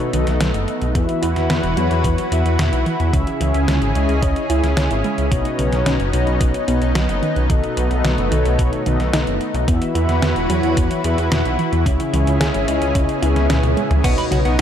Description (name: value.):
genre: synthwave.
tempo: 110 BPM.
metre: 4/4.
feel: straight.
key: unclear.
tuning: A4 = 439 Hz.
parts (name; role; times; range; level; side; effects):
lush unison pad; sustained chords; 0.0-14.6 s; C#3 to B4; -22 LUFS; equal; chorus, vintage 12-bit sampler grit, sidechain pumping.
soft round pluck; arpeggios; 0.0-14.6 s; B2 to G#4; -26 LUFS; right 3 dB; chorus, digital delay.
mellow synth brass; stabs; 0.0-14.6 s; B2 to E5; -24 LUFS; left 2 dB; chorus, digital delay.
detuned 8-bit digital drum machine; drums; 0.0-14.6 s; crash cymbal, hi-hat, snare drum, toms; -24 LUFS; equal; overdrive.
wide detuned saw bass; bass; 0.1-14.6 s; E1 to E2; -19 LUFS; equal; chorus.
electronic kick drum; drums; 1.0-14.2 s; none; -20 LUFS; equal; overdrive.
swell; sound effects; 13.1-14.0 s; none; -29 LUFS; right 3 dB; none.
clean electric guitar; riff; 14.0-14.6 s; B3 to B4; -23 LUFS; right 2 dB; analog chorus, digital delay.
room: light reverb, digital ambience.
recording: dark, warm production.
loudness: -16 LUFS.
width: side -9 dB against mid.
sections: 0.0-14.0 A section.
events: swell 13.1-14.0; drum fill 13.5-14.0.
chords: 0.0 B7; 1.0 Esus2; 3.1 C#m; 5.3 Badd9; 7.5 B7; 9.7 Esus2; 11.9 C#m; 14.0 Badd9.